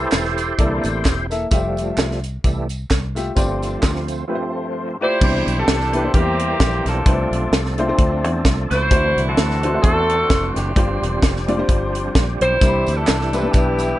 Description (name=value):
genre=uptempo gospel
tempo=130 BPM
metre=4/4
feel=swing 56% on 8ths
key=C major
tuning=A4 = 441 Hz
part: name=warm upright piano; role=accompaniment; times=0.0-14.0 s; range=G2 to B5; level=-24 LUFS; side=left 2 dB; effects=none
part: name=overdriven tonewheel organ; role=sustained chords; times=0.0-14.0 s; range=D3 to C5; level=-25 LUFS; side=right 1 dB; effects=slow rotary speaker, chorus vibrato
part: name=fingered electric bass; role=bass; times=0.0-13.9 s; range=E1 to E2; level=-23 LUFS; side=equal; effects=none
part: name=tight funk drum kit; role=drums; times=0.1-13.9 s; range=crash cymbal, hi-hat, kick drum, snare drum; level=-18 LUFS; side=equal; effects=none
part: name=handclaps and tambourine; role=percussion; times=0.1-4.2, 12.6-13.9 s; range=none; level=-32 LUFS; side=right 4 dB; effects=none
part: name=warm saxophone section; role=melody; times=5.0-14.0 s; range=Bb3 to C5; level=-20 LUFS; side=equal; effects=none
room=little or no reverb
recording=nothing above 10.8 kHz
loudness=-16 LUFS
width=side -15 dB against mid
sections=0.0-5.2 A section; 5.2-14.0 B section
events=tonewheel organ solo 0.0-5.2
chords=0.0 Am9; 0.6 C13; 1.5 Fmaj9; 3.4 G7sus4; 5.2 Cmaj9; 6.1 C7/E; 7.1 F6; 8.9 D9; 10.8 G7sus4; 12.6 Cmaj9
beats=0.12 0.58 1.05 | 1.51 1.98 2.44 2.90 | 3.37 3.83 4.29 4.75 | 5.22 5.68 6.14 6.60 | 7.06 7.52 7.99 8.45 | 8.91 9.37 9.83 10.30 | 10.76 11.22 11.69 12.15 | 12.61 13.07 13.54